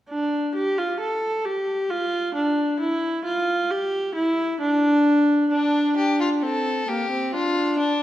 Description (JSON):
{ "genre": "classical, baroque-style fugue for string quartet", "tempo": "66 BPM", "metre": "3/4", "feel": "straight", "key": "D minor", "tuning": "A4 = 440 Hz", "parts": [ { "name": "warm viola", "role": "accompaniment", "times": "0.1-8.0 s", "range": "Bb3 to A4", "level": "-21 LUFS", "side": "equal", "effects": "none" }, { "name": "warm violin", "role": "second line", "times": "5.5-8.0 s", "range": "D4 to A4", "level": "-24 LUFS", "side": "left 2 dB", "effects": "none" } ], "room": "wet recital hall reverb, RT60 1.5 s", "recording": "none", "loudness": "-20 LUFS", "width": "side -13 dB against mid", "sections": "0.1-5.5 A section; 5.5-8.0 B section", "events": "none", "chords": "0.1 N.C.; 5.5 Dm" }